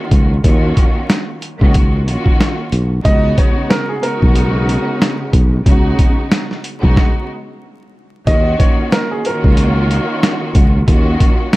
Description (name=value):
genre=hip hop, boom-bap hip-hop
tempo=92 BPM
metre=4/4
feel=swing 57% on 16ths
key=Eb minor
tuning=A4 = 442 Hz
part: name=warm studio string section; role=accompaniment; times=0.0-11.6 s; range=Db3 to Gb4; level=-20 LUFS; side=equal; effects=cassette tape, high-pass filter, low-pass filter
part: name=sustaining fretless electric bass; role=bass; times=0.1-11.1 s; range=Cb2 to Eb2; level=-15 LUFS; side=equal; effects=none
part: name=boom bap sampler-style drum kit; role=drums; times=0.1-11.6 s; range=hi-hat, kick drum, snare drum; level=-13 LUFS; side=equal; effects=none
part: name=warm upright piano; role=melody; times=3.0-10.2 s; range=Ab4 to Eb5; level=-20 LUFS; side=right 1 dB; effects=high-pass filter, low-pass filter, dub echo
room=little or no reverb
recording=echo-heavy mix, vinyl crackle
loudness=-11 LUFS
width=side -19 dB against mid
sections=0.0-8.3 A section; 8.3-11.6 B section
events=stop 7.0-8.3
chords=0.0 Ebm7; 3.0 Db7sus4; 8.3 Ebm7